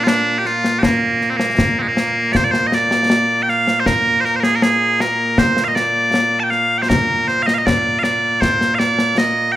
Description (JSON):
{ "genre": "scottish traditional, Scottish pipe music", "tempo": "79 BPM", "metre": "2/4", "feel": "straight", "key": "Bb mixolydian", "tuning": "A4 = 438 Hz", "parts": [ { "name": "loud bright bagpipes", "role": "melody", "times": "0.0-9.6 s", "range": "Bb2 to A5", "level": "-15 LUFS", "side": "right 1 dB", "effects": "none" }, { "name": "concert snare drum and concert bass drum", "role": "drums", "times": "0.1-9.4 s", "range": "none", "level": "-19 LUFS", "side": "left 1 dB", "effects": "none" } ], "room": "moderate recital hall reverb, RT60 1.7 s", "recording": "minimal, uncompressed stereo recording", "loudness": "-14 LUFS", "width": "side -13 dB against mid", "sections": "0.0-2.3 A section; 2.3-9.6 B section", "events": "none", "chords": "none" }